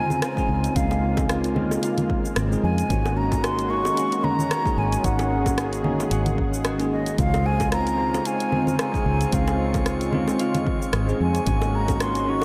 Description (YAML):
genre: sunset chillout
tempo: 112 BPM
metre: 4/4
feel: swing 56% on 16ths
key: Db major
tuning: A4 = 441 Hz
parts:
  - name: wooden flute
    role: melody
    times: 0.0-12.4 s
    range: Eb5 to Db6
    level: -30 LUFS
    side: equal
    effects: tape echo
  - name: bell-like tine electric piano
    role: accompaniment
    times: 0.0-12.4 s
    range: Ab3 to Ab4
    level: -30 LUFS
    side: equal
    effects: diffuse ambient delay
  - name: lush unison pad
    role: sustained chords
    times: 0.0-12.4 s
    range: Db3 to Ab4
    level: -31 LUFS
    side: equal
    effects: chorus, vintage 12-bit sampler grit
  - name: concert harp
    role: arpeggios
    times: 0.0-12.4 s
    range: C4 to Gb5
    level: -36 LUFS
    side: equal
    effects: none
  - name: smooth R&B drum kit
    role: drums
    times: 0.1-12.3 s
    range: congas, hi-hat, rim click, shaker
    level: -33 LUFS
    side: equal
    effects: none
  - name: electronic kick drum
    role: drums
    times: 0.4-12.0 s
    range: none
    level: -29 LUFS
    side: equal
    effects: none
  - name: fingered electric bass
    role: bass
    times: 0.5-12.4 s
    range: Ab1 to F2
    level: -28 LUFS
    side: equal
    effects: none
  - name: bongos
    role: percussion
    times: 0.9-12.4 s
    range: none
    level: -39 LUFS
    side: equal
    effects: none
  - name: drifting glass-harmonics texture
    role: texture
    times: 8.1-12.4 s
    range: Db6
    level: -43 LUFS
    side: equal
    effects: chorus, built-in reverb
room: wet cathedral reverb, RT60 6.9 s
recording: dreamy mix soaked in reverb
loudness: -23 LUFS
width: mono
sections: 0.0-12.4 A section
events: none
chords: 0.0 Dbmaj7; 2.9 Ab7sus4; 7.2 Dbmaj7; 11.5 Ab7sus4